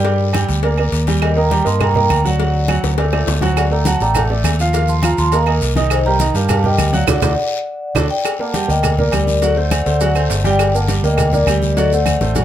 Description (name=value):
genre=latin, salsa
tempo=205 BPM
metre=4/4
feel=straight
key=G harmonic minor from 8.3 s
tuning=A4 = 440 Hz
part: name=vibraphone with medium mallets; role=melody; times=0.0-12.4 s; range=A4 to C6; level=-19 LUFS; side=left 1 dB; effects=none
part: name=warm baby grand piano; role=accompaniment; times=0.0-12.4 s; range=Eb3 to G5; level=-20 LUFS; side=right 3 dB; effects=none
part: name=fingered electric bass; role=bass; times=0.0-12.4 s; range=G1 to G2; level=-17 LUFS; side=equal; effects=none
part: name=agogo bells and timbales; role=percussion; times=0.0-12.4 s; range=none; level=-26 LUFS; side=right 6 dB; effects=none
part: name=cowbell and bongos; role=percussion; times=0.0-12.4 s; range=none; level=-27 LUFS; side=left 8 dB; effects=none
part: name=congas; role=percussion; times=0.1-12.4 s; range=none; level=-24 LUFS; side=left 1 dB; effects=none
part: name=guiro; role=percussion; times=0.1-12.4 s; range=none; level=-30 LUFS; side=left 7 dB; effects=none
part: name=claves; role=percussion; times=0.3-12.2 s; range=none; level=-26 LUFS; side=right 12 dB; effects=none
part: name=maracas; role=percussion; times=3.6-12.4 s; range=none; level=-30 LUFS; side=right 7 dB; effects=none
room=light reverb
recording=none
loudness=-13 LUFS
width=side -11 dB against mid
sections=0.0-8.3 A section; 8.3-12.4 B section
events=drum fill 2.8-3.6, 7.4-8.3, 12.1-12.4; band accent 7.1-8.3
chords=0.0 Gm; 1.2 Eb; 2.4 D; 4.7 Ebsus2; 5.9 Cm7; 7.1 D; 8.3 Gmadd9; 9.4 D7; 10.6 Gmadd9; 11.8 D7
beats=| 0.05 0.34 0.64 0.93 | 1.22 1.51 1.81 2.10 | 2.39 2.69 2.98 3.27 | 3.56 3.86 4.15 4.44 | 4.74 5.03 5.32 5.62 | 5.91 6.20 6.49 6.79 | 7.08 7.37 7.67 7.96 | 8.25 8.54 8.84 9.13 | 9.42 9.72 10.01 10.30 | 10.60 10.89 11.18 11.47 | 11.77 12.06 12.35